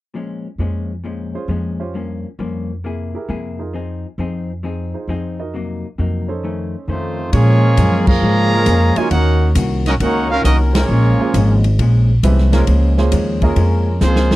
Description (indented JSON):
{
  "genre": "jazz, big band swing",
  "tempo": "134 BPM",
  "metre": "4/4",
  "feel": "swing 67% on 8ths",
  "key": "Bb minor",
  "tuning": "A4 = 440 Hz",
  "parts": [
    { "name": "vintage hollow-body jazz guitar", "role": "accompaniment", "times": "0.1-14.3 s", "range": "F2 to Ab4", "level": "-24 LUFS", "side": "left 4 dB", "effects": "none" },
    { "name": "upright bass", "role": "bass", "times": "0.6-14.4 s", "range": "Ab1 to Bb2", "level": "-16 LUFS", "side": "equal", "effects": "none" },
    { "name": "clear grand piano", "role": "accompaniment", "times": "1.3-14.0 s", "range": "A3 to Eb5", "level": "-23 LUFS", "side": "right 5 dB", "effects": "none" },
    { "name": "clear trumpet section", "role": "melody", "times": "6.9-14.4 s", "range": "A3 to Bb5", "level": "-19 LUFS", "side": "equal", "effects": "none" },
    { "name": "warm trombone section", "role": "second line", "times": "6.9-14.4 s", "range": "Db3 to Gb4", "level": "-21 LUFS", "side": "right 4 dB", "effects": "none" },
    { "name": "swinging big-band drum kit", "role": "drums", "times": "7.3-14.4 s", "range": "crash cymbal, hi-hat, kick drum, ride cymbal, snare drum", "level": "-21 LUFS", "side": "equal", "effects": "none" },
    { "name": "dark trombone section", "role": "sustained chords", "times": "8.5-14.0 s", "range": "Gb3 to Bb4", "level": "-24 LUFS", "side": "left 3 dB", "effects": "none" }
  ],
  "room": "little or no reverb",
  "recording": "dry, close 1970s-style studio recording",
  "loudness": "-14 LUFS",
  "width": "side -17 dB against mid",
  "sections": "0.1-7.3 A section; 7.3-14.4 B section",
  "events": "band accent 8.0, 10.7; drum fill 14.0-14.4",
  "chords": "0.1 Bbm7; 1.9 Gm7b5; 2.8 C7b13; 3.7 Fm7; 5.5 Cm7b5; 6.4 F7b13; 7.3 Bbm7; 9.1 Ebm7; 10.9 Bbm7",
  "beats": "| 0.14 0.59 1.04 1.49 | 1.94 2.39 2.84 3.29 | 3.74 4.18 4.63 5.08 | 5.53 5.98 6.43 6.88 | 7.32 7.77 8.22 8.66 | 9.11 9.55 10.00 10.45 | 10.89 11.34 11.78 12.23 | 12.67 13.12 13.56 14.01"
}